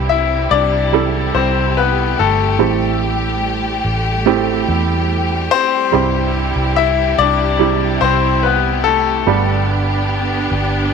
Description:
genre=pop ballad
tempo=72 BPM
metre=4/4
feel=straight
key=C major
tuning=A4 = 440 Hz
part: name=warm upright piano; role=accompaniment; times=0.0-10.9 s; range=G2 to A4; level=-20 LUFS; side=right 14 dB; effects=none
part: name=clear studio string section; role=sustained chords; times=0.0-10.9 s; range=C3 to G4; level=-21 LUFS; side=left 1 dB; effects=none
part: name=vintage muted fingered electric bass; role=bass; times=0.0-10.9 s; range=G1 to E2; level=-19 LUFS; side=equal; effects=none
part: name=bright baby grand piano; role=melody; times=0.1-9.7 s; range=A3 to E5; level=-16 LUFS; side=left 12 dB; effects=slapback echo
room=light reverb, small room ambience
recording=1960s-style stereo with parts hard left and right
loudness=-13 LUFS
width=side -6 dB against mid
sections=0.0-10.9 A section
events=none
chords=0.0 C; 2.6 Am7; 5.9 C; 9.3 G

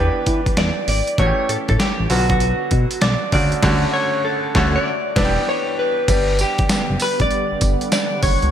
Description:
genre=R&B, new jack swing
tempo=98 BPM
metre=4/4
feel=swing 65% on 16ths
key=unclear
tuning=A4 = 439 Hz
part: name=direct-recorded clean electric guitar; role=melody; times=0.0-8.5 s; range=F#4 to D5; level=-21 LUFS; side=equal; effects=lush chorus
part: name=bright grand piano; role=accompaniment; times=0.0-8.5 s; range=C#3 to G4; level=-23 LUFS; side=right 1 dB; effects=none
part: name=smooth synth bass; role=bass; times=0.0-8.5 s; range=E1 to E3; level=-20 LUFS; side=equal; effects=none
part: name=boom bap sampler-style drum kit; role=drums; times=0.3-8.5 s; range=crash cymbal, hi-hat, kick drum, snare drum, tambourine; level=-21 LUFS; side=equal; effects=overdrive, gated reverb
part: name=sweeping resonant pad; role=sustained chords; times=6.1-8.5 s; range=D3 to F#5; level=-26 LUFS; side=right 1 dB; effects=chorus
room=moderate lush hall reverb, RT60 2.3 s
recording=bright 1980s-style digital production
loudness=-16 LUFS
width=side -9 dB against mid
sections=0.0-6.1 A section; 6.1-8.5 B section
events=band accent 3.6-6.1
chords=0.0 Em7; 1.2 A7; 2.1 Bm; 3.3 Dmaj7; 4.9 Em7; 6.1 Gmaj7

